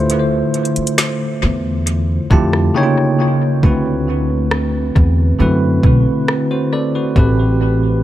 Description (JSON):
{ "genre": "contemporary R&B", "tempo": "68 BPM", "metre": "4/4", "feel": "straight", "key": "unclear", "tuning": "A4 = 440 Hz", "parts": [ { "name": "bell-like tine electric piano", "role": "accompaniment", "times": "0.0-8.0 s", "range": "A2 to A5", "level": "-15 LUFS", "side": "equal", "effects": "medium stereo tremolo, tape echo" }, { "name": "upright bass", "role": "bass", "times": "0.0-8.0 s", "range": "A1 to F#2", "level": "-16 LUFS", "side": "equal", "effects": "none" }, { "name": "smooth R&B drum kit", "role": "drums", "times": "0.1-7.4 s", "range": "hi-hat, kick drum, rim click, snare drum", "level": "-16 LUFS", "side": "equal", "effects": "tape echo" } ], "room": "light reverb", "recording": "echo-heavy mix", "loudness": "-13 LUFS", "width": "side -13 dB against mid", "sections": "0.0-3.6 A section; 3.6-8.0 B section", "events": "tine electric piano fill 1.9-3.6; drums muted 2.7-3.6", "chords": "0.0 Dm9; 2.7 C#69; 3.6 D13; 7.2 Am7", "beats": "| 0.10 0.98 1.87 2.75 | 3.63 4.51 5.40 6.28 | 7.16" }